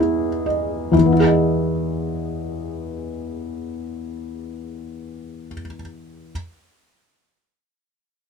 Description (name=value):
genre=classical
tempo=45 BPM (dotted quarters)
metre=6/8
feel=rubato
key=E major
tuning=A4 = 435 Hz
part: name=felt-muted upright piano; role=accompaniment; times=0.0-6.3 s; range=E2 to D#5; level=-20 LUFS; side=left 1 dB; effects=none
room=light reverb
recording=close, detailed microphones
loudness=-19 LUFS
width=side -6 dB against mid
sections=0.9-6.3 A section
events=none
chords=0.0 Emaj7